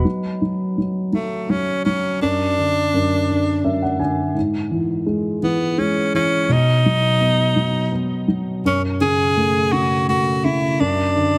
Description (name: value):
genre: pop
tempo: 56 BPM (dotted quarters)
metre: 6/8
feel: straight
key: unclear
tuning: A4 = 444 Hz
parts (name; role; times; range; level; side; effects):
- dark upright piano; accompaniment; 0.0-11.4 s; F#2 to G#5; -21 LUFS; equal; none
- raspy tenor saxophone; melody; 1.1-11.4 s; A3 to G#4; -22 LUFS; equal; tape echo
room: light reverb, studio reverb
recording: none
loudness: -19 LUFS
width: mono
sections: 0.1-11.4 A section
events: upright piano fill 3.3-4.4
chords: 0.1 N.C.; 2.2 E9/F#; 4.4 E/G#; 6.5 B; 8.6 F#m; 10.8 D/F#